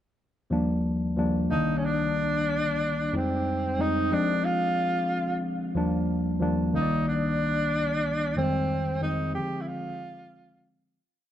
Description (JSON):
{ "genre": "soul", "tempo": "92 BPM", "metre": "4/4", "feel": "swing 54% on 16ths", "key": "unclear", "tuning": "A4 = 441 Hz", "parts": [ { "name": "tine electric piano", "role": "accompaniment", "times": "0.5-11.0 s", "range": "C2 to D5", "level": "-26 LUFS", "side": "left 1 dB", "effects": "wide subtle chorus" }, { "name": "breathy tenor saxophone", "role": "melody", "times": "1.5-10.6 s", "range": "C4 to G4", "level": "-28 LUFS", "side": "right 1 dB", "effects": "none" } ], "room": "light reverb", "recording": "dark, warm production", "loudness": "-24 LUFS", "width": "side -11 dB against mid", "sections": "0.5-11.0 verse", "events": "fade-out 8.4-11.0", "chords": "0.5 Ebmaj7; 1.5 Cm9; 3.1 Fm9; 4.1 Fm6; 5.7 Ebmaj7; 6.7 Cm9; 8.4 Fm9; 9.3 Dm7b5", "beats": "| 0.51 1.17 1.82 2.48 | 3.13 3.79 4.44 5.09 | 5.75 6.40 7.06 7.71 | 8.36 9.02 9.67 10.32" }